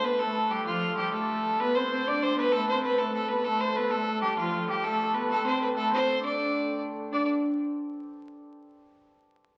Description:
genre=medieval dance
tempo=130 BPM (dotted quarters)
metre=6/8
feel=straight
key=D dorian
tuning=A4 = 438 Hz
part: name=clear fiddle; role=melody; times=0.0-7.3 s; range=F4 to D5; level=-30 LUFS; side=equal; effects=none
part: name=dark viola da gamba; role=second line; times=0.0-7.3 s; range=F3 to D4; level=-35 LUFS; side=equal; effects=none
part: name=hammered dulcimer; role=second line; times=0.0-8.7 s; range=F4 to D5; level=-34 LUFS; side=equal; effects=none
part: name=rich hurdy-gurdy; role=drone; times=0.0-7.2 s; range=D3 to A3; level=-40 LUFS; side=equal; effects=none
room=wet large studio reverb, RT60 1.4 s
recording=very old 78 rpm record, vinyl crackle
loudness=-28 LUFS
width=mono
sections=0.0-7.1 A section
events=none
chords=none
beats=0.20 | 0.67 1.13 | 1.60 2.06 | 2.52 2.99 | 3.45 3.91 | 4.37 4.83 | 5.29 5.75 | 6.21 6.66 | 7.12 7.58

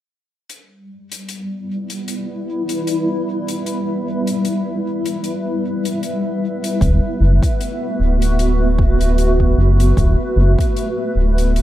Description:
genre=ambient dub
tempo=76 BPM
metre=4/4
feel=swing 56% on 16ths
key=E minor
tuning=A4 = 440 Hz
part: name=granular cloud pad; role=sustained chords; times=1.2-11.6 s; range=G3 to E5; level=-20 LUFS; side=equal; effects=built-in reverb
part: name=hi-hat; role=drums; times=0.5-11.6 s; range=none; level=-32 LUFS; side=left 5 dB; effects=none
part: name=round analog bass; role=bass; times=6.8-11.6 s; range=D1 to F#1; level=-14 LUFS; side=equal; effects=none
part: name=electronic kick drum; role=drums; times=6.8-10.7 s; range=none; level=-19 LUFS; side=equal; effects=none
room=studio reverb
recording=none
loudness=-16 LUFS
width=side -13 dB against mid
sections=0.5-11.6 A section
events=none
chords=0.5 Em; 6.8 D69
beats=| 0.50 1.29 2.08 2.87 | 3.66 4.45 5.24 6.03 | 6.81 7.60 8.39 9.18 | 9.97 10.76 11.55

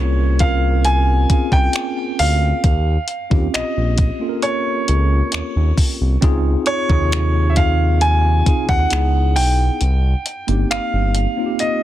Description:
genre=contemporary R&B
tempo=67 BPM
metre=4/4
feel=straight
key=unclear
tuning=A4 = 440 Hz
part: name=clear grand piano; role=melody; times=0.0-11.8 s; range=Db5 to Ab5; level=-21 LUFS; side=right 1 dB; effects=digital delay
part: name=mellow tine electric piano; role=accompaniment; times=0.0-11.8 s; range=C3 to Bb4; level=-23 LUFS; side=equal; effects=medium stereo tremolo
part: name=smooth synth bass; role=bass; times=0.0-11.3 s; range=G1 to Eb2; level=-16 LUFS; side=equal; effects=none
part: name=crisp 8-bit digital drum machine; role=drums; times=0.4-11.8 s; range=finger snaps, hi-hat, kick drum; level=-18 LUFS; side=equal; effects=soft clipping on snare
room=little or no reverb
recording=dense, heavily limited modern master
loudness=-15 LUFS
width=side -13 dB against mid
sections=0.0-11.8 A section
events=break 9.8-11.8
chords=0.0 Bbm9; 2.6 Eb13; 6.2 Dbmaj9; 8.9 Dbm7; 9.8 Cm7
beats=0.85 1.75 | 2.64 3.54 4.43 5.33 | 6.22 7.12 8.01 8.91 | 9.80 10.70 11.60

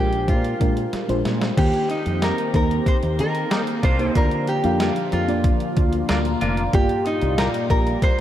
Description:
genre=1980s-style pop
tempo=93 BPM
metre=4/4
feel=straight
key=unclear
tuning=A4 = 440 Hz
part: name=lap resonator guitar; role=melody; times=0.0-8.2 s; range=Eb4 to C5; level=-25 LUFS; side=equal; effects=diffuse ambient delay
part: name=FM electric piano with soft pad layer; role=accompaniment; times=0.0-8.2 s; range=G2 to Bb5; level=-24 LUFS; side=equal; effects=chorus, tremolo
part: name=woody fretless electric bass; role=bass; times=0.0-7.9 s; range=F1 to Eb3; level=-24 LUFS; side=equal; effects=lush chorus
part: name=clean 12-bit digital drum machine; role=drums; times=0.1-8.2 s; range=crash cymbal, hi-hat, kick drum, snare drum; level=-22 LUFS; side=equal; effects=none
part: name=phased analog pad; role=sustained chords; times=2.1-8.2 s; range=Bb2 to G4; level=-29 LUFS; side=equal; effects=phaser, chorus
part: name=warm horn section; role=stabs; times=2.2-7.5 s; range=Bb3 to Bb4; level=-32 LUFS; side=right 1 dB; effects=none
room=moderate plate reverb, RT60 3.0 s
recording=dreamy mix soaked in reverb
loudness=-18 LUFS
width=side -11 dB against mid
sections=0.0-1.6 A section; 1.6-8.2 B section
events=drum fill 0.9-1.6; FM electric piano fill 5.8-6.7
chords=0.0 Bb7; 1.6 Eb6; 4.2 Bb/D; 6.7 Gm7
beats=0.28 0.93 | 1.57 2.22 2.87 3.51 | 4.16 4.80 5.45 6.09 | 6.74 7.38 8.03

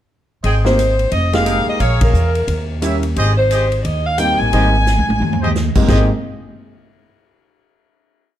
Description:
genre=jazz, big band swing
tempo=176 BPM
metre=4/4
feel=swing 62% on 8ths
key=Ab major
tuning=A4 = 442 Hz
part: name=clear trumpet section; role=stabs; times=0.4-6.0 s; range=Fb4 to G5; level=-24 LUFS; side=right 1 dB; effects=none
part: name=upright bass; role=bass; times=0.4-6.1 s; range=F1 to Fb2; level=-17 LUFS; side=equal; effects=none
part: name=swinging big-band drum kit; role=drums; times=0.4-6.0 s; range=crash cymbal, hi-hat, kick drum, ride cymbal, snare drum, toms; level=-21 LUFS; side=equal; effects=none
part: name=clear saxophone section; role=melody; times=0.5-6.1 s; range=Eb4 to Ab5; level=-18 LUFS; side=equal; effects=none
part: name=clear concert grand piano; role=accompaniment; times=0.6-6.1 s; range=Ab2 to G4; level=-21 LUFS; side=equal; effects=none
room=light reverb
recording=dark, warm production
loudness=-13 LUFS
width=side -12 dB against mid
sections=0.4-5.9 A section; 5.9-7.2 final chord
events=band accent 2.0; drum fill 4.9-5.5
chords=0.4 Abmaj7; 1.1 Fm11; 1.8 Bbm7; 2.5 Eb7b9; 3.2 Abmaj7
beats=| 0.44 0.78 1.12 1.47 | 1.81 2.15 2.49 2.83 | 3.17 3.51 3.85 4.19 | 4.53 4.87 5.21 5.55 | 5.89

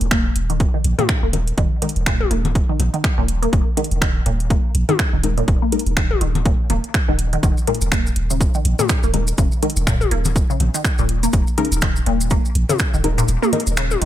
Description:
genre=minimal techno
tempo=123 BPM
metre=4/4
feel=swing 58% on 16ths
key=unclear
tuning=A4 = 437 Hz
part: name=punchy sub bass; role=bass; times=0.0-14.1 s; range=Eb1 to Bb1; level=-20 LUFS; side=equal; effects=sidechain pumping
part: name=house drum kit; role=drums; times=0.0-14.1 s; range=finger snaps, hi-hat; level=-25 LUFS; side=right 1 dB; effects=overdrive
part: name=resonant blip pluck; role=riff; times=0.1-14.1 s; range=Bb2 to Bb3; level=-24 LUFS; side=equal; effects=phaser, lush chorus, sidechain pumping, ping-pong delay
part: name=electronic kick drum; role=drums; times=0.1-12.9 s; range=none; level=-19 LUFS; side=equal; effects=overdrive
part: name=electronic toms and congas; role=percussion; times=1.0-14.0 s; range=none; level=-23 LUFS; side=left 6 dB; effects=none
part: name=filtered dub chord stab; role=stabs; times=1.3-13.6 s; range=Ab3 to Bb4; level=-24 LUFS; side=left 4 dB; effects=phaser, ping-pong delay
part: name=maracas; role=percussion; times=7.4-14.0 s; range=none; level=-29 LUFS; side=equal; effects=none
room=digital ambience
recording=none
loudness=-16 LUFS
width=side -12 dB against mid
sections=0.0-14.1 A section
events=filter sweep on synth stab 0.0-14.1; kick drops out 13.3-14.1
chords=0.0 Eb5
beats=0.11 0.60 1.09 | 1.58 2.06 2.55 3.04 | 3.53 4.02 4.50 4.99 | 5.48 5.97 6.46 6.94 | 7.43 7.92 8.41 8.89 | 9.38 9.87 10.36 10.85 | 11.33 11.82 12.31 12.80 | 13.29 13.77

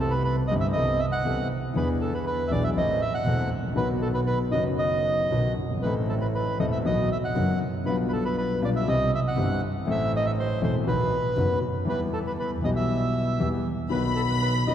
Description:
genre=tango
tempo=119 BPM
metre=4/4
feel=rubato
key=E harmonic minor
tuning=A4 = 438 Hz
part: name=bandoneon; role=melody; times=0.0-14.7 s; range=A4 to F#5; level=-28 LUFS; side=right 2 dB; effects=none
part: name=warm concert grand piano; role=accompaniment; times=0.0-14.7 s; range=E1 to A4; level=-27 LUFS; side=left 2 dB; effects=none
part: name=dark double bass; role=bass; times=0.0-14.7 s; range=E1 to E2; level=-29 LUFS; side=right 2 dB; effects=none
part: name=warm studio violin section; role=second line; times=13.9-14.7 s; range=B5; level=-28 LUFS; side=left 4 dB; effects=none
room=wet church reverb, RT60 3.5 s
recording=recorded in a church or concert hall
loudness=-23 LUFS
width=side -10 dB against mid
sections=0.0-14.7 A section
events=none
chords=0.0 C6; 0.8 Amadd9/C; 1.8 E7; 2.8 Am; 3.8 B; 5.8 Am; 6.9 B; 7.9 G7/B; 8.9 C; 9.9 Am; 10.9 B; 11.9 Em; 13.9 B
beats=0.27 0.77 1.27 | 1.77 2.27 2.77 3.27 | 3.78 4.29 4.79 5.31 | 5.83 6.34 6.85 7.36 | 7.87 8.37 8.87 9.37 | 9.87 10.37 10.87 11.37 | 11.87 12.38 12.89 13.40 | 13.91 14.42

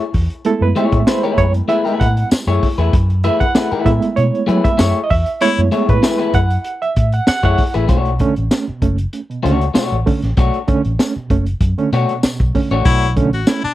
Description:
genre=funk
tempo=97 BPM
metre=4/4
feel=straight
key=unclear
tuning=A4 = 440 Hz
part: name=electric guitar at the edge of break-up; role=accompaniment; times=0.0-13.1 s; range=A3 to C#5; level=-19 LUFS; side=left 5 dB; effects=spring reverb
part: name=vintage muted fingered electric bass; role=bass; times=0.1-13.7 s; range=F#1 to F#3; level=-17 LUFS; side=equal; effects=none
part: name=crunchy breakbeat drum kit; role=drums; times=0.1-13.7 s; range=hi-hat, kick drum, snare drum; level=-16 LUFS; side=equal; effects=none
part: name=barky reed electric piano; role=stabs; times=0.4-13.7 s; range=B2 to F#5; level=-19 LUFS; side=right 4 dB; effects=overdrive, fast tremolo
part: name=tambourine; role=percussion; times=1.1-13.6 s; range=none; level=-29 LUFS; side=left 2 dB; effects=none
part: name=bright baritone saxophone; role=second line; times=5.4-5.6, 12.9-13.7 s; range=D4 to F#4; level=-19 LUFS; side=left 5 dB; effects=none
room=light reverb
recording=dry, close 1970s-style studio recording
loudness=-13 LUFS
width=side -14 dB against mid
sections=0.0-7.9 A section; 7.9-13.7 B section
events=reed electric piano solo 0.0-7.9; band accent 5.4-7.9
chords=0.0 F#m11; 7.9 Bm9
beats=| 0.45 1.07 1.69 2.31 | 2.93 3.55 4.17 4.79 | 5.41 6.03 6.65 7.27 | 7.89 8.51 9.13 9.75 | 10.37 10.99 11.61 12.23 | 12.85 13.47

